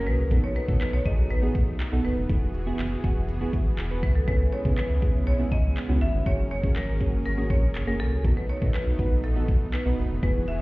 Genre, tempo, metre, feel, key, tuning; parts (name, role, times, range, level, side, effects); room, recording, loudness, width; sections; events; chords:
dance-pop; 121 BPM; 4/4; straight; A4 = 440 Hz
glassy wavetable pluck; accompaniment; 0.0-10.5 s; A#3 to B4; -31 LUFS; right 2 dB; chorus, sidechain pumping
supersaw chords; sustained chords; 0.0-10.6 s; C#3 to A#4; -37 LUFS; equal; sidechain pumping
sub bass with octave; bass; 0.0-10.6 s; E1 to C#3; -26 LUFS; equal; sidechain pumping
marimba with hard mallets; melody; 0.1-10.6 s; A4 to E5; -33 LUFS; left 1 dB; tape echo
pop drum kit; drums; 0.1-10.6 s; handclaps, hi-hat, kick drum; -25 LUFS; equal
digital ambience; heard muffled through a wall, stone room reverb, EQ, nothing above 7.9 kHz; -22 LUFS; side -21 dB against mid
0.0-10.6 A section
0.3 B7; 2.3 Eadd9; 4.3 C#m7; 6.3 F#add9; 8.2 B7